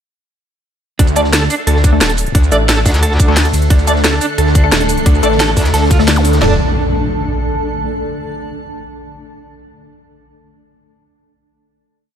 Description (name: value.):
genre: dark technical drum and bass.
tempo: 177 BPM.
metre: 4/4.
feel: straight.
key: unclear.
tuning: A4 = 440 Hz.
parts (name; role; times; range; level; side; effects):
clean electric guitar; arpeggios; 1.0-6.6 s; D4 to D5; -19 LUFS; right 4 dB; tremolo, sidechain pumping, dub echo.
wide detuned saw bass; bass; 1.0-6.6 s; D1 to D2; -14 LUFS; equal; chorus.
crunchy breakbeat drum kit; drums; 1.0-6.4 s; hi-hat, ride cymbal, snare drum; -27 LUFS; equal; high-pass filter on cymbals, studio reverb, high-pass filter on hats, high-pass filter on snare, high-pass filter on room.
drum and bass drum kit; drums; 1.0-6.5 s; crash cymbal, kick drum, snare drum, toms; -12 LUFS; equal; studio reverb.
drum and bass drum kit; drums; 1.0-6.4 s; hi-hat, shaker, snare drum; -17 LUFS; equal; studio reverb.
granular cloud pad; texture; 2.7-7.7 s; D4 to A5; -22 LUFS; right 2 dB; built-in reverb, sidechain pumping.
filtered dub chord stab; stabs; 1.2-6.5 s; A3 to A4; -20 LUFS; left 3 dB; phaser, dub echo.
metallic wobble bass; bass; 2.9-3.5, 5.6-5.7 s; D2; -13 LUFS; equal; chorus.
swarming drone; sustained chords; 4.3-6.6 s; D3 to D4; -22 LUFS; left 1 dB; built-in reverb, sidechain pumping.
zap and impact; sound effects; 6.2-7.8 s; none; -20 LUFS; equal; none.
room: light reverb.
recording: none.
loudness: -10 LUFS.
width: side -9 dB against mid.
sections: 1.0-6.4 drop; 6.4-7.8 final chord.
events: drop 1.0-6.4.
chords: 1.0 D5.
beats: | 0.99 1.33 1.67 2.01 | 2.35 2.69 3.03 3.37 | 3.70 4.04 4.38 4.72 | 5.06 5.40 5.74 6.08 | 6.42 6.75 7.09 7.43.